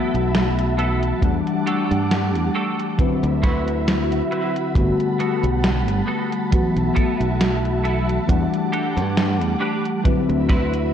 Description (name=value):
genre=vaporwave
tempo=68 BPM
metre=4/4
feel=swing 55% on 16ths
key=unclear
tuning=A4 = 440 Hz
part: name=mellow FM electric piano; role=accompaniment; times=0.0-10.9 s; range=D3 to F#5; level=-22 LUFS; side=left 2 dB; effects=wide subtle chorus, ping-pong delay
part: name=soft string machine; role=sustained chords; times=0.0-10.9 s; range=G3 to D6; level=-26 LUFS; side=right 1 dB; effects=ensemble chorus, vintage 12-bit sampler grit
part: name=clean electric guitar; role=riff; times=0.0-10.7 s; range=B3 to B4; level=-30 LUFS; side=right 2 dB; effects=ensemble chorus, ping-pong delay
part: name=modern bright fingered electric bass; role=bass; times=0.1-10.9 s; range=G1 to G2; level=-22 LUFS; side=right 1 dB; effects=tube saturation
part: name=gated 80s digital drum machine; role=drums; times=0.1-10.9 s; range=hi-hat, snare drum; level=-26 LUFS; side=right 1 dB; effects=gated reverb, gated reverb snare, vintage 12-bit sampler grit
part: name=kick drum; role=drums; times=1.2-10.7 s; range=none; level=-20 LUFS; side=right 1 dB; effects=vintage 12-bit sampler grit
room=wet lush hall reverb, RT60 2.7 s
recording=dreamy mix soaked in reverb, cassette tape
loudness=-18 LUFS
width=side -9 dB against mid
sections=0.0-10.9 A section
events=none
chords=0.0 B7sus4; 1.2 Em11; 3.0 D13; 4.8 Gmaj9; 6.5 B7sus4; 8.3 Em11; 10.1 D13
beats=0.34 | 1.23 2.11 2.99 3.87 | 4.76 5.64 6.52 7.40 | 8.29 9.17 10.05 10.93